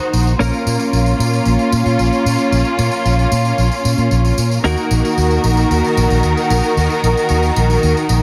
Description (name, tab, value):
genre	italo disco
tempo	113 BPM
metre	4/4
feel	straight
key	Bb minor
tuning	A4 = 440 Hz
part	dark studio string section	sustained chords	0.0-8.2 s	Eb3 to C5	-20 LUFS	equal	none
part	direct-recorded clean electric guitar	stabs	0.0-8.2 s	Bb3 to Bb4	-24 LUFS	equal	ensemble chorus, low-pass filter, digital delay
part	tambourine	drums	0.0-8.2 s	none	-29 LUFS	equal	none
part	fingered electric bass	bass	0.1-8.2 s	Bb1 to Bb2	-18 LUFS	equal	none
room	light reverb, small room ambience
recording	none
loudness	-15 LUFS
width	mono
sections	0.0-8.2 A section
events	none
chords	0.4 Bbm; 4.6 Ebm